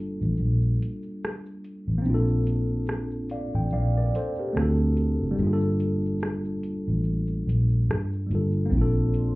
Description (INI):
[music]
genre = lo-fi hip hop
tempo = 72 BPM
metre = 4/4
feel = swing 57% on 16ths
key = unclear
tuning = A4 = 440 Hz
[part]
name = mellow tine electric piano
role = accompaniment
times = 0.0-9.4 s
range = G3 to G5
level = -28 LUFS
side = equal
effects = medium stereo tremolo, plate reverb
[part]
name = vintage muted fingered electric bass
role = bass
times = 0.0-9.4 s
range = F#1 to G2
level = -24 LUFS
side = equal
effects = none
[part]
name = booming analog drum machine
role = drums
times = 0.2-9.4 s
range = hi-hat, kick drum, rim click, shaker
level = -29 LUFS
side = equal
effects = none
[part]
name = deep dark ambient pad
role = sustained chords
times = 9.0-9.4 s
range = Bb3 to C6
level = -42 LUFS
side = equal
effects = chorus, built-in reverb, plate reverb
[sound]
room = light reverb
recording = heard muffled through a wall, cassette tape, club reverb, EQ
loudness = -23 LUFS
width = side -21 dB against mid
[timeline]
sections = 0.0-9.4 A section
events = break 0.0-8.7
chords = 0.0 Gm9; 2.0 Bbmaj9; 4.5 D7; 5.4 Gm9; 8.7 Bbmaj9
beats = 0.38 1.21 | 2.04 2.88 3.71 4.54 | 5.38 6.21 7.04 7.88 | 8.71